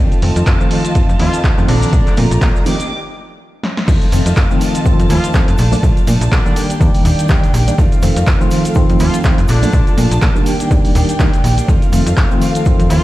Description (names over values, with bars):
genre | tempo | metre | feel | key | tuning
filtered disco house | 123 BPM | 4/4 | swing 57% on 16ths | F mixolydian | A4 = 440 Hz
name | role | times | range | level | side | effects
dark studio violin section | sustained chords | 0.0-13.0 s | A3 to D6 | -25 LUFS | right 1 dB | sidechain pumping, low-pass filter
clean electric guitar | riff | 0.0-13.0 s | Eb3 to G4 | -23 LUFS | equal | lush chorus, sidechain pumping, low-pass filter
slap-like FM bass | bass | 0.0-13.0 s | Eb1 to Bb2 | -15 LUFS | equal | sidechain pumping, low-pass filter
punchy analog drum machine | drums | 0.1-13.0 s | cabasa, crash cymbal, handclaps, hi-hat, snare drum | -23 LUFS | equal | none
tube shaker | percussion | 0.1-13.0 s | none | -37 LUFS | equal | none
reed electric piano | accompaniment | 0.2-13.0 s | D3 to D4 | -19 LUFS | equal | overdrive, fast tremolo, phaser, sidechain pumping, low-pass filter
electronic kick drum | drums | 0.5-12.8 s | none | -13 LUFS | equal | none
bright horn section | melody | 1.2-10.0, 12.9-13.0 s | D3 to F4 | -25 LUFS | left 2 dB | vintage 12-bit sampler grit, sidechain pumping, low-pass filter, digital delay
room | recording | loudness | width
digital ambience | played on a big sound system in a bare room, stone room reverb | -11 LUFS | side -16 dB against mid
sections
0.0-3.9 A section; 3.9-13.0 B section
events
build-up 0.0-3.9; filter sweep 0.0-3.9; break 2.9-3.9; drum fill 3.6; drop 3.9-13.0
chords
0.0 F7; 1.7 Bbmaj7; 2.7 Ebmaj7; 3.9 F7; 5.6 Bbmaj7; 6.6 Ebmaj7; 7.8 F7; 9.5 Bbmaj7; 10.5 Ebmaj7; 11.7 F7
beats
0.47 0.95 1.44 | 1.93 2.42 2.90 3.39 | 3.88 4.37 4.86 5.34 | 5.83 6.32 6.81 7.29 | 7.78 8.27 8.76 9.24 | 9.73 10.22 10.71 11.20 | 11.68 12.17 12.66